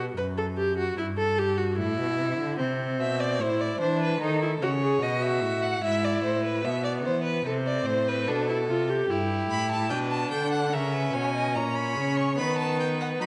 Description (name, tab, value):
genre	classical, baroque-style fugue for string quartet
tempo	74 BPM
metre	4/4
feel	straight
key	unclear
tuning	A4 = 440 Hz
part	rich viola	accompaniment	0.0-13.3 s	B3 to B4	-31 LUFS	equal	none
part	rich cello	bass	0.0-13.3 s	F#2 to F#3	-32 LUFS	equal	none
part	rich violin	second line	3.0-13.3 s	F#4 to F#5	-32 LUFS	equal	none
part	rich violin	melody	9.5-13.3 s	E5 to C#6	-33 LUFS	equal	none
room	wet scoring stage reverb, RT60 1.7 s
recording	nothing above 11.0 kHz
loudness	-27 LUFS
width	mono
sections	0.0-13.3 A section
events	none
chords	0.0 B5; 1.0 Em/G; 2.6 Am; 4.2 B7; 5.8 E/G#; 7.5 Am; 9.1 Em/G; 10.7 C#m13; 12.4 B/D#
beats	0.18 0.98 1.79 | 2.59 3.40 4.21 5.03 | 5.84 6.66 7.47 8.29 | 9.10 9.91 10.74 11.56 | 12.38 13.21